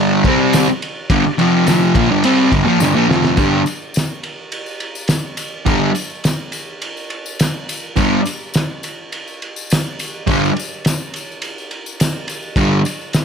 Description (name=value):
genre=garage rock duo or trio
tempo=105 BPM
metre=4/4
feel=straight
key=G minor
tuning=A4 = 440 Hz
part: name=fuzz guitar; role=riff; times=0.0-12.8 s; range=F2 to C4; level=-13 LUFS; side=equal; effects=distortion
part: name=cloth-damped thuddy drum kit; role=drums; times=0.2-13.2 s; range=kick drum, ride cymbal, snare drum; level=-20 LUFS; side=equal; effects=none
part: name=tambourine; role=percussion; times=0.5-13.2 s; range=none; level=-30 LUFS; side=left 8 dB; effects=none
room=light reverb, studio reverb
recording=none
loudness=-14 LUFS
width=side -6 dB against mid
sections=0.0-3.4 A section; 3.4-13.2 B section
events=drum fill 2.8-3.4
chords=0.0 G5; 1.4 F5; 2.0 Gm; 3.4 G5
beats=0.54 | 1.11 1.68 2.25 2.82 | 3.39 3.96 4.53 5.11 | 5.68 6.25 6.83 7.40 | 7.97 8.55 9.12 9.70 | 10.27 10.84 11.42 11.99 | 12.57 13.14